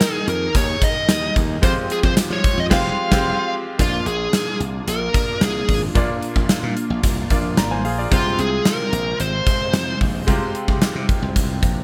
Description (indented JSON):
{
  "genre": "1980s-style pop",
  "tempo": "111 BPM",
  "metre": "4/4",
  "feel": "straight",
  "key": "unclear",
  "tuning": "A4 = 440 Hz",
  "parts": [
    { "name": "bluesy overdriven lead guitar", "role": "melody", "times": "0.0-10.0 s", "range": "F4 to F5", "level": "-26 LUFS", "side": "equal", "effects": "distortion, delay" },
    { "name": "bright grand piano", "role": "accompaniment", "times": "0.0-11.8 s", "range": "Bb2 to Bb5", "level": "-29 LUFS", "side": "equal", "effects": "none" },
    { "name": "string machine, violas", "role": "sustained chords", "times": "0.0-11.8 s", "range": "C3 to Bb4", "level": "-32 LUFS", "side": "equal", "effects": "phaser, ensemble chorus" },
    { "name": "gated 80s drum kit", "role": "drums", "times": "0.0-11.8 s", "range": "crash cymbal, hi-hat, kick drum, snare drum, tambourine", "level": "-22 LUFS", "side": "equal", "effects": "none" },
    { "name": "glassy slap bass", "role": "bass", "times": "0.3-11.8 s", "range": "F1 to F3", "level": "-27 LUFS", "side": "equal", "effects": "none" }
  ],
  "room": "light reverb, studio ambience",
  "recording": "bright 1980s-style digital production",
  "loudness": "-20 LUFS",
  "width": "mono",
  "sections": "0.0-3.8 A section; 3.8-11.8 B section",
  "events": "band accent 2.7-3.8; grand piano fill 7.3-8.1",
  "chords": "0.0 Ebsus4; 1.6 Fmadd9; 3.8 Bb; 8.1 Fm"
}